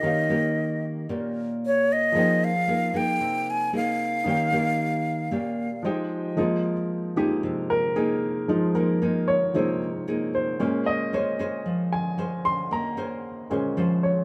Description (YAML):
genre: bossa nova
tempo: 114 BPM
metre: 4/4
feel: straight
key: F minor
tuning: A4 = 443 Hz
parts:
  - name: breathy jazz flute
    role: melody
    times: 0.0-5.8 s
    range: Db5 to Ab5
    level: -27 LUFS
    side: equal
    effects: none
  - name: nylon-string guitar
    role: accompaniment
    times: 0.0-14.2 s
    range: Bb2 to C5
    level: -29 LUFS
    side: equal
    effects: none
  - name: warm baby grand piano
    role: accompaniment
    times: 0.0-14.2 s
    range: Bb2 to C6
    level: -29 LUFS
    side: equal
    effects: none
room: moderate echo chamber reverb, RT60 2.4 s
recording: none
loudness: -25 LUFS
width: mono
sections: 0.0-6.4 A section; 6.4-14.2 B section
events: grand piano solo 6.4-14.2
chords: 0.0 Eb7; 2.1 Fm11; 4.3 Eb7; 5.8 Fm9; 6.4 Fm11; 10.6 Bbm9